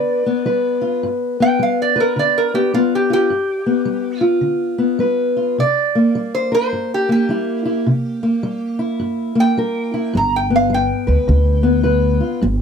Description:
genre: acoustic country blues, solo or duo.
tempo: 105 BPM.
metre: 4/4.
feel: swing 62% on 8ths.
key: G mixolydian.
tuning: A4 = 439 Hz.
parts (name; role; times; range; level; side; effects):
metal-body resonator slide guitar; melody; 0.0-12.4 s; F4 to Bb5; -18 LUFS; right 2 dB; none.
fingerpicked steel-string acoustic guitar; accompaniment; 0.0-12.6 s; G2 to B4; -17 LUFS; left 2 dB; none.
upright bass; bass; 10.2-12.6 s; G1 to D2; -16 LUFS; equal; none.
room: little or no reverb.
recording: dry, close 1970s-style studio recording.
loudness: -15 LUFS.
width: side -6 dB against mid.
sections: 0.0-12.6 A section.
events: resonator guitar played with a steel bar solo 0.0-12.6.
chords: 0.0 G7; 5.6 C7; 10.2 G.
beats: 0.46 | 1.03 1.60 2.17 2.74 | 3.31 3.88 4.45 5.02 | 5.59 6.16 6.73 7.30 | 7.87 8.44 9.01 9.58 | 10.15 10.72 11.29 11.86 | 12.43.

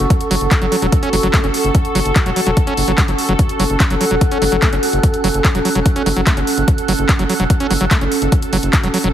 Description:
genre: psychedelic trance.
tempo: 146 BPM.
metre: 4/4.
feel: straight.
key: F# minor.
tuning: A4 = 440 Hz.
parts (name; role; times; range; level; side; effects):
swarming drone; sustained chords; 0.0-9.1 s; A4; -21 LUFS; left 1 dB; built-in reverb, sidechain pumping.
round analog bass; bass; 0.0-9.1 s; E1 to F#1; -20 LUFS; equal; none.
drum and bass drum kit; drums; 0.0-9.1 s; handclaps, hi-hat; -21 LUFS; equal; overdrive.
warbly tape-like pad; texture; 0.0-9.1 s; C#4 to F#6; -22 LUFS; right 3 dB; chorus, built-in reverb, sidechain pumping.
electronic kick drum; drums; 0.1-8.8 s; none; -15 LUFS; equal; none.
overdriven acid bass; riff; 0.3-9.1 s; F#3 to C#4; -21 LUFS; right 1 dB; distortion, auto-pan, sidechain pumping, digital delay.
room: light reverb, digital ambience.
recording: heavily compressed radio sound, multiband compression.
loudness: -13 LUFS.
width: side -10 dB against mid.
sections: 0.0-9.1 A section.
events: none.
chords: 0.0 F#5.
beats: | 0.10 0.51 0.93 1.34 | 1.75 2.16 2.57 2.98 | 3.39 3.80 4.21 4.62 | 5.03 5.45 5.86 6.27 | 6.68 7.09 7.50 7.91 | 8.32 8.73.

